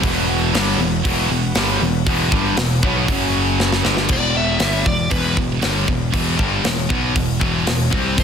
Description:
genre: hard rock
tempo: 118 BPM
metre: 4/4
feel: straight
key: E dorian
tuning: A4 = 441 Hz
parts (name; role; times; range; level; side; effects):
- overdriven tonewheel organ; sustained chords; 0.0-4.1 s; E3 to F#4; -32 LUFS; right 1 dB; none
- distorted electric guitar; riff; 0.0-4.1 s; E2 to B3; -24 LUFS; right 1 dB; overdrive
- scooped high-gain guitar; riff; 0.0-8.2 s; E2 to C4; -23 LUFS; right 11 dB; distortion
- sludgy distorted guitar; riff; 0.0-8.2 s; E2 to C4; -22 LUFS; left 13 dB; overdrive
- modern bright picked electric bass; bass; 0.0-8.2 s; E1 to C2; -23 LUFS; right 1 dB; none
- tight metal drum kit; drums; 0.0-8.2 s; crash cymbal, hi-hat, kick drum, snare drum; -21 LUFS; equal; none
- dark smooth lead guitar; melody; 4.1-8.2 s; B4 to E5; -23 LUFS; equal; overdrive, tape echo
room: small room ambience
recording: dense, heavily limited modern master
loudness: -16 LUFS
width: side -7 dB against mid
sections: 0.0-4.1 A section; 4.1-8.2 B section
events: drum fill 3.6-4.1; lead electric guitar solo 4.1-8.2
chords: 0.0 Em; 3.1 F#5; 3.8 Em

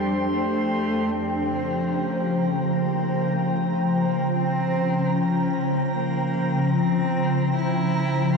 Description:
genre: ambient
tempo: 75 BPM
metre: 4/4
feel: straight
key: unclear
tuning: A4 = 440 Hz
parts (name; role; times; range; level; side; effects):
- clear cello; melody; 0.0-8.4 s; G3 to F4; -30 LUFS; equal; ping-pong delay
- glassy FM pad; sustained chords; 0.0-8.4 s; F2 to Bb5; -21 LUFS; left 1 dB; ensemble chorus, built-in reverb
- drifting glass-harmonics texture; texture; 0.0-8.4 s; C6 to Bb6; -38 LUFS; right 2 dB; chorus, built-in reverb
room: wet huge ambient reverb, RT60 8.2 s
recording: dark, warm production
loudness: -21 LUFS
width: side -4 dB against mid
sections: 0.0-1.1 A section; 1.1-8.4 B section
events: fade-in on synth texture 1.1-8.4; fade-in on cello 1.1-8.4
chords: 0.0 Dm7/F; 1.1 Bbmadd9

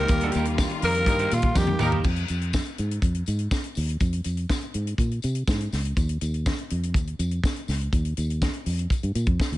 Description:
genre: disco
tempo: 122 BPM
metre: 4/4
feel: straight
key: F minor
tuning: A4 = 440 Hz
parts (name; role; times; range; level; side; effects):
- growling tenor saxophone; melody; 0.0-2.1 s; F4 to Bb4; -26 LUFS; equal; none
- electric guitar at the edge of break-up; accompaniment; 0.0-2.0 s; Bb3 to C5; -33 LUFS; right 6 dB; none
- tine electric piano; accompaniment; 0.0-2.1 s; Eb3 to G4; -31 LUFS; left 1 dB; overdrive, fast stereo tremolo
- clear studio string section; sustained chords; 0.0-2.0 s; Eb3 to F4; -34 LUFS; left 1 dB; none
- fingered electric bass; bass; 0.0-9.6 s; Db2 to C3; -26 LUFS; equal; none
- tight funk drum kit; drums; 0.1-9.6 s; crash cymbal, hi-hat, kick drum, snare drum, toms; -26 LUFS; equal; none
- tambourine; percussion; 0.1-9.5 s; none; -41 LUFS; left 8 dB; none
- warm horn section; stabs; 0.8-2.0 s; G3 to Bb4; -32 LUFS; left 2 dB; none
room: studio reverb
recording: nothing above 10.9 kHz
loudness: -23 LUFS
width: side -16 dB against mid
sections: 0.0-2.0 A section; 2.0-9.6 B section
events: tenor saxophone solo 0.0-2.0; band accent 0.1-2.0; drum fill 1.6-2.0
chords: 0.0 Eb; 2.0 Fm; 6.0 N.C.

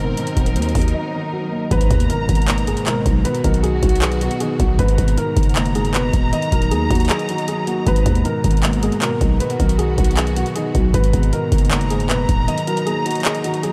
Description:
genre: hip hop, trap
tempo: 156 BPM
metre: 4/4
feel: half-time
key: G# minor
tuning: A4 = 441 Hz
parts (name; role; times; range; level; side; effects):
- felt-muted upright piano; accompaniment; 0.0-13.7 s; G#2 to D#5; -25 LUFS; equal; subtle chorus, low-pass filter
- warm symphonic string section; sustained chords; 0.0-13.7 s; B2 to A#5; -28 LUFS; equal; none
- growling 808-style bass; bass; 0.0-12.5 s; D#1 to D#2; -23 LUFS; equal; none
- swell and impact; sound effects; 0.0-3.2 s; none; -33 LUFS; equal; none
- booming analog drum machine; drums; 0.2-13.7 s; handclaps, hi-hat, kick drum; -22 LUFS; equal; none
- dark grand piano; melody; 1.7-13.7 s; F#4 to D#5; -27 LUFS; equal; low-pass filter, delay
room: light reverb, small room reverb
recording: none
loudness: -18 LUFS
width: mono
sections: 0.0-1.7 A section; 1.7-13.7 B section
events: break 0.0-1.7, 7.1-7.9; swell 0.0-1.7; impact 1.7-3.2; kick muted 12.5-13.7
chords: 0.2 D#m; 1.7 G#madd9; 3.2 B; 4.8 G#madd9; 6.3 D#m; 7.9 G#madd9; 9.4 B; 10.9 G#madd9; 12.5 D#m

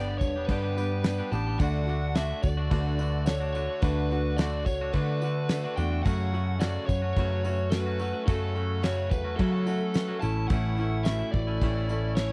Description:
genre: folk rock and heartland rock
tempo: 108 BPM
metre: 4/4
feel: straight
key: unclear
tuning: A4 = 439 Hz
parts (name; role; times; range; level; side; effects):
- biting lead guitar; melody; 0.0-12.3 s; A4 to A5; -36 LUFS; equal; overdrive
- clear grand piano; accompaniment; 0.0-12.3 s; A3 to C#5; -44 LUFS; equal; none
- picked steel-string acoustic guitar; accompaniment; 0.0-12.3 s; F#2 to G4; -39 LUFS; equal; none
- tonewheel organ; sustained chords; 0.0-12.3 s; D4 to C#6; -47 LUFS; equal; none
- twangy electric guitar; riff; 0.0-12.3 s; F#2 to G4; -38 LUFS; equal; none
- hollow-body short-scale picked electric bass; bass; 0.0-12.3 s; E1 to F#3; -31 LUFS; equal; none
- damped 70s drum kit; drums; 0.2-12.3 s; crash cymbal, kick drum, snare drum; -31 LUFS; equal; none
- tambourine; percussion; 0.2-12.3 s; none; -56 LUFS; equal; none
room: little or no reverb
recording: dry, close 1970s-style studio recording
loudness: -28 LUFS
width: mono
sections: 0.0-12.3 A section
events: none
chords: 0.0 G; 1.6 D; 6.0 F#m; 10.2 A

